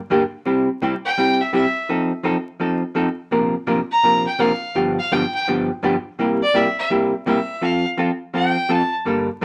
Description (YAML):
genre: country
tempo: 168 BPM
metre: 4/4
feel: swing 65% on 8ths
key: unclear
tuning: A4 = 441 Hz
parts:
  - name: archtop guitar, miked and amplified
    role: accompaniment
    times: 0.1-9.4 s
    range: G2 to Bb4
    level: -21 LUFS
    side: equal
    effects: none
  - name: bright fiddle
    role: melody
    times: 1.1-8.9 s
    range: D5 to Bb5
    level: -23 LUFS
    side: equal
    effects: none
room: wet studio reverb, RT60 0.6 s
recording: vinyl crackle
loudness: -20 LUFS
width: mono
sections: 0.0-9.4 A section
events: fiddle solo 0.0-9.4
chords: 0.5 C; 1.9 F7; 3.3 Bbadd9; 4.8 G7; 6.2 C7; 7.6 F